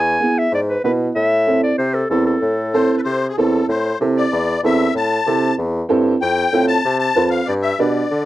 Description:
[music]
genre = latin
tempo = 190 BPM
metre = 4/4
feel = straight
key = A harmonic minor, A minor from 3.7 s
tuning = A4 = 442 Hz
[part]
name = warm clarinet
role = melody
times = 0.0-3.3 s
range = A4 to G#5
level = -19 LUFS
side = left 1 dB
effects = none
[part]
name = warm bassoon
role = bass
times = 0.0-8.3 s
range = E2 to D3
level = -20 LUFS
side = left 1 dB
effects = none
[part]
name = dark upright piano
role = accompaniment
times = 0.2-8.0 s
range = B3 to B4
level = -18 LUFS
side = right 3 dB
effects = none
[part]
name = musette accordion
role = second line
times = 2.7-8.3 s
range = G#4 to A5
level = -20 LUFS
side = left 4 dB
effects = none
[sound]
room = light reverb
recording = dry, close 1970s-style studio recording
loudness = -15 LUFS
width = side -15 dB against mid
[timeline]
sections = 0.0-3.7 A section; 3.7-8.3 B section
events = accordion solo 3.7-8.3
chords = 0.0 E; 1.2 Am; 6.2 Fadd9; 7.5 G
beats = 0.21 0.53 0.84 | 1.16 1.48 1.79 2.11 | 2.42 2.74 3.06 3.37 | 3.69 4.00 4.32 4.64 | 4.95 5.27 5.59 5.90 | 6.22 6.53 6.85 7.17 | 7.48 7.80 8.11

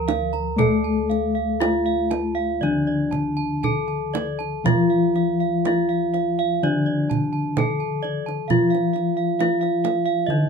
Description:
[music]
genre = Javanese gamelan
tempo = 59-69 BPM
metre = 4/4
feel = straight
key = unclear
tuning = A4 = 440 Hz
[part]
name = gamelan-type bronze metallophone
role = melody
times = 0.0-10.5 s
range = D4 to Bb4-20c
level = -23 LUFS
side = left 2 dB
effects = none
[part]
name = gamelan-type bronze metallophone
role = accompaniment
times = 0.0-10.5 s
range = D3 to A3-30c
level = -25 LUFS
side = left 4 dB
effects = none
[part]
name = gamelan-type bronze metallophone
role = arpeggios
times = 0.0-10.5 s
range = D5 to Bb5-20c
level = -27 LUFS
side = right 11 dB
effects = none
[part]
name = gamelan-type bossed gongs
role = bass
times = 0.0-10.5 s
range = D2 to A4-30c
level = -30 LUFS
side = left 1 dB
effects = none
[part]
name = kendang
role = percussion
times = 0.1-10.4 s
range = none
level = -26 LUFS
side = right 7 dB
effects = none
[sound]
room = light reverb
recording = minimal, uncompressed stereo recording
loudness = -19 LUFS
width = side -6 dB against mid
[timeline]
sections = 0.0-10.5 A section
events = none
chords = none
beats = | 0.58 1.60 2.62 3.63 | 4.65 5.65 6.63 7.58 | 8.51 9.41 10.29

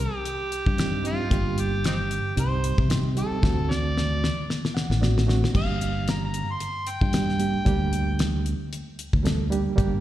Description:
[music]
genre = straight-eighth soul blues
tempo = 113 BPM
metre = 4/4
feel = swing 55% on 16ths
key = G minor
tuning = A4 = 439 Hz
[part]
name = overdriven harmonica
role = melody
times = 0.0-8.4 s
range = C4 to C6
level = -31 LUFS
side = equal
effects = slapback echo, analog delay
[part]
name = bright reed electric piano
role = accompaniment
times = 0.0-10.0 s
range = G3 to F#5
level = -29 LUFS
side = right 4 dB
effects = fast tremolo, slapback echo
[part]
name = fingered electric bass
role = bass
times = 0.0-10.0 s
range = G1 to C3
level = -25 LUFS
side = equal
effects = none
[part]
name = damped 70s drum kit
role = drums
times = 0.3-9.9 s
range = crash cymbal, hi-hat, kick drum, snare drum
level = -25 LUFS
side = left 1 dB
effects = none
[sound]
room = little or no reverb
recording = live gig heard through the venue's PA, recital hall reverb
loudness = -22 LUFS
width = side -13 dB against mid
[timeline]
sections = 0.0-5.5 A section; 5.5-10.0 B section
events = drum fill 3.4-5.5; reed electric piano fill 4.5-5.5; harmonica solo 5.5-10.0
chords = 0.0 Cm; 1.3 Gm; 2.4 Cm; 3.4 D7; 5.5 Gm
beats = 0.25 0.78 | 1.31 1.84 2.37 2.90 | 3.43 3.96 4.49 5.01 | 5.54 6.07 6.60 7.13 | 7.66 8.19 8.72 9.24 | 9.77

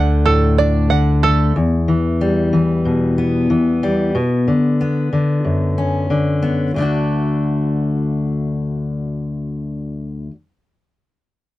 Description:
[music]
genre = indie folk with a building arrangement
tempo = 92 BPM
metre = 4/4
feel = straight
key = D major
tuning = A4 = 439 Hz
[part]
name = fingerpicked steel-string acoustic guitar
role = accompaniment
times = 0.0-10.3 s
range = D2 to F#4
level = -16 LUFS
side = left 1 dB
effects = none
[part]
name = open-back banjo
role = arpeggios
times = 0.0-1.6 s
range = A4 to F#5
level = -18 LUFS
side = right 6 dB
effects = none
[part]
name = fingered electric bass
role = bass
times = 0.0-1.5 s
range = D2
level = -16 LUFS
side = equal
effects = none
[sound]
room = little or no reverb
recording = dry, close 1970s-style studio recording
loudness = -15 LUFS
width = side -16 dB against mid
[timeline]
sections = 0.0-6.7 A section; 6.7-9.3 B section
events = none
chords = 0.0 D; 1.5 Em; 4.1 Bmadd9; 6.7 D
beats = 0.25 0.90 | 1.55 2.20 2.84 3.49 | 4.14 4.79 5.44 6.09 | 6.74 7.39 8.04 8.69

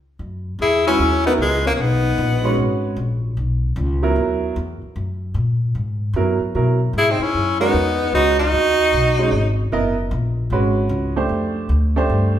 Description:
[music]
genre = modal jazz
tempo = 151 BPM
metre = 4/4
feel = swing 64% on 8ths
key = F# mixolydian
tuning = A4 = 440 Hz
[part]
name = upright bass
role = bass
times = 0.2-12.4 s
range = F#1 to B2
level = -20 LUFS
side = left 1 dB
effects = none
[part]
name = edgy tenor saxophone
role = melody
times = 0.6-2.6, 7.0-9.5 s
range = G#3 to E4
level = -19 LUFS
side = right 1 dB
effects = none
[part]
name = breathy alto saxophone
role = second line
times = 0.6-2.6, 7.0-9.5 s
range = B3 to G#4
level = -21 LUFS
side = left 3 dB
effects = none
[part]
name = clear baby grand piano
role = accompaniment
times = 0.9-12.4 s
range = F#3 to D#5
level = -22 LUFS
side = right 4 dB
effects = none
[sound]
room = wet large studio reverb, RT60 1.4 s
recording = band playing live in one room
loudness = -16 LUFS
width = side -10 dB against mid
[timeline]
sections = 0.2-12.4 A section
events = stop 0.0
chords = 0.2 F#13sus4; 11.3 F69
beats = | 0.22 0.61 1.01 1.40 | 1.80 2.19 2.59 2.98 | 3.38 3.77 4.17 4.57 | 4.96 5.36 5.75 6.15 | 6.55 6.94 7.34 7.74 | 8.13 8.53 8.93 9.32 | 9.72 10.12 10.51 10.91 | 11.31 11.70 12.10

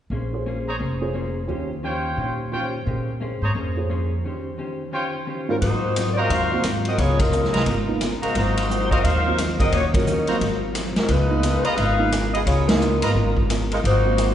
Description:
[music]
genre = jazz, big band swing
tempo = 175 BPM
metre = 4/4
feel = swing 62% on 8ths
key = Ab mixolydian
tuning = A4 = 438 Hz
[part]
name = vintage hollow-body jazz guitar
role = accompaniment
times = 0.1-14.3 s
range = Ab2 to C5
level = -30 LUFS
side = left 2 dB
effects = none
[part]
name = upright bass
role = bass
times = 0.1-14.3 s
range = F1 to Bb2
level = -24 LUFS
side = equal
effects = none
[part]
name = dark baby grand piano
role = accompaniment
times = 0.3-14.3 s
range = Ab2 to F5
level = -29 LUFS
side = right 3 dB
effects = none
[part]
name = brilliant trumpet section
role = stabs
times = 0.7-13.1 s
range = F4 to Bb5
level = -28 LUFS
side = equal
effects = none
[part]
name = warm saxophone section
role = melody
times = 5.5-14.3 s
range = Gb3 to F5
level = -23 LUFS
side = left 1 dB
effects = none
[part]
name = swinging big-band drum kit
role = drums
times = 5.6-14.3 s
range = hi-hat, kick drum, ride cymbal, rim click, snare drum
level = -25 LUFS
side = equal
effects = none
[sound]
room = wet scoring stage reverb, RT60 2.1 s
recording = heard from further back in the room, nothing above 10.4 kHz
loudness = -19 LUFS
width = side -10 dB against mid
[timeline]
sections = 0.1-5.6 A section; 5.6-14.3 B section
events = break 4.2-5.6; band accent 7.1, 9.9, 12.6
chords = 0.1 Bbm9; 1.5 Eb13; 2.9 Bbm9; 4.2 Eb13; 5.6 Ab13; 7.0 Db13; 8.3 Ab13; 9.7 Ebm7; 10.4 Ab6; 11.1 Db13; 13.8 Ab13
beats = | 0.12 0.46 0.80 1.15 | 1.49 1.83 2.18 2.52 | 2.86 3.21 3.55 3.89 | 4.24 4.58 4.92 5.26 | 5.61 5.95 6.29 6.64 | 6.98 7.32 7.66 8.01 | 8.35 8.69 9.03 9.38 | 9.72 10.06 10.40 10.74 | 11.09 11.43 11.77 12.12 | 12.46 12.80 13.14 13.49 | 13.83 14.17

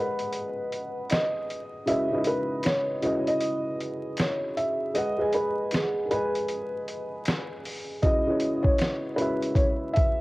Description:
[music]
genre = lo-fi hip hop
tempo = 78 BPM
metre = 4/4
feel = swing 62% on 16ths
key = C# minor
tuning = A4 = 440 Hz
[part]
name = felt-muted upright piano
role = melody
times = 0.0-10.2 s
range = G#4 to E5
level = -28 LUFS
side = equal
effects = cassette tape, analog delay
[part]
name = dark upright piano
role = accompaniment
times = 0.0-10.2 s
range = C#3 to G#5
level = -29 LUFS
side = equal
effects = cassette tape
[part]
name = dusty soul sampler-style drum kit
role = drums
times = 0.2-10.2 s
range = hi-hat, kick drum, snare drum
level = -27 LUFS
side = equal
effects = none
[part]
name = finger snap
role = percussion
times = 1.1-9.0 s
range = none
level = -42 LUFS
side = left 1 dB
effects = none
[sound]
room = moderate spring reverb, RT60 1.9 s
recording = home recording on cassette, vinyl crackle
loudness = -24 LUFS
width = side -20 dB against mid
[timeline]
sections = 0.0-10.2 A section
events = break 0.0-8.0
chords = 0.0 G#m7; 1.9 C#m11; 5.0 G#m7; 8.0 C#m11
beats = 0.34 1.11 | 1.88 2.65 3.42 4.19 | 4.96 5.72 6.49 7.26 | 8.03 8.80 9.57

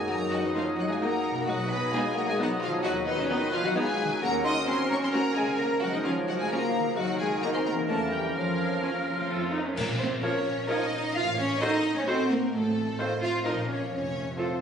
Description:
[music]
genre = cinematic, playful, whimsical film cue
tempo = 130 BPM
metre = 3/4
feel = straight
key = Bb minor from 4.2 s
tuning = A4 = 440 Hz
[part]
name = marimba with medium hard mallets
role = melody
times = 0.0-9.3 s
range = Db4 to Eb5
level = -34 LUFS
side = left 4 dB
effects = none
[part]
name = rich chamber violin section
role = melody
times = 0.0-14.6 s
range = A4 to Eb6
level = -36 LUFS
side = left 2 dB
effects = none
[part]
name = bright oboe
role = second line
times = 0.0-14.6 s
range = A4 to Eb5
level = -36 LUFS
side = right 1 dB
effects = none
[part]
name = dark clarinet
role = second line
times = 0.0-14.5 s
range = C4 to Bb4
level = -35 LUFS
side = right 1 dB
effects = none
[part]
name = warm bassoon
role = accompaniment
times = 0.0-14.5 s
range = Eb3 to Gb3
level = -37 LUFS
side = right 3 dB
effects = none
[part]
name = mellow French horn section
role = sustained chords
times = 0.0-14.5 s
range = Db3 to C5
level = -36 LUFS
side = left 2 dB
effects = none
[part]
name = concert harp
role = arpeggios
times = 0.0-14.6 s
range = F2 to F#5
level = -37 LUFS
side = left 4 dB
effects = none
[part]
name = dark chamber cello section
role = bass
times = 0.0-14.6 s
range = Db3 to F4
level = -32 LUFS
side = right 2 dB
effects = none
[part]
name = mellow large flute ensemble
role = second line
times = 0.1-14.5 s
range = Bb4 to C6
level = -36 LUFS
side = left 1 dB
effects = none
[part]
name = warm chamber violin section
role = second line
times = 0.1-14.6 s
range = Db4 to F5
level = -35 LUFS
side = left 1 dB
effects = none
[part]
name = rich chamber double bass section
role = bass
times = 0.1-14.3 s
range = F1 to Gb2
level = -40 LUFS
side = right 2 dB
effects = none
[part]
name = warm symphonic viola section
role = accompaniment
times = 0.6-14.5 s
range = Bb3 to C5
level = -35 LUFS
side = right 1 dB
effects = none
[part]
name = cymbal swell, clash cymbals and concert bass drum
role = percussion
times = 7.0-10.7 s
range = none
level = -36 LUFS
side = equal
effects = none
[sound]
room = wet concert hall reverb, RT60 2.3 s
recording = recorded on a phone in the room, studio reverb, nothing above 10.9 kHz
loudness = -25 LUFS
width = side -7 dB against mid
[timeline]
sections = 0.0-9.8 A section; 9.8-14.6 B section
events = band accent 9.8-10.2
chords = 0.1 Ebm/Gb; 1.5 B; 2.8 B/D#; 4.2 Ebm7; 5.6 Bbm/Db; 7.0 Ebm; 7.9 Edim7; 8.4 Bbm/F; 9.3 F; 9.8 Bbm; 11.2 Adim7; 12.5 F7/A; 13.5 Bbm; 13.9 F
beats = | 0.09 0.55 1.01 | 1.47 1.93 2.39 | 2.85 3.30 3.76 | 4.22 4.67 5.13 | 5.59 6.05 6.51 | 6.97 7.43 7.89 | 8.36 8.83 9.30 | 9.77 10.24 10.70 | 11.16 11.62 12.08 | 12.54 12.99 13.45 | 13.91 14.38

